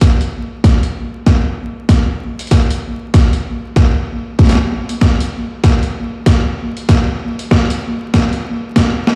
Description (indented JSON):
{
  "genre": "glitch hop",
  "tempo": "96 BPM",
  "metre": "4/4",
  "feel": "swing 62% on 16ths",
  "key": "none",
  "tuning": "none",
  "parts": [
    { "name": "boom bap sampler-style drum kit", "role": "drums", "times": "0.0-9.2 s", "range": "hi-hat, snare drum", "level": "-20 LUFS", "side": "equal", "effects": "none" },
    { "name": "electronic kick drum", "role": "drums", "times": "0.0-8.9 s", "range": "none", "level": "-13 LUFS", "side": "equal", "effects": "none" }
  ],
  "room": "moderate plate reverb, RT60 2.6 s",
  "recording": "played on a big sound system in a bare room, stone room reverb, vinyl crackle, high-pass filter",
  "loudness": "-15 LUFS",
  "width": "mono",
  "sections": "0.0-9.2 A section",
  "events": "build-up 0.0-9.2; drum fill 0.0-9.2; filter sweep 0.0-9.2",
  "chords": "none"
}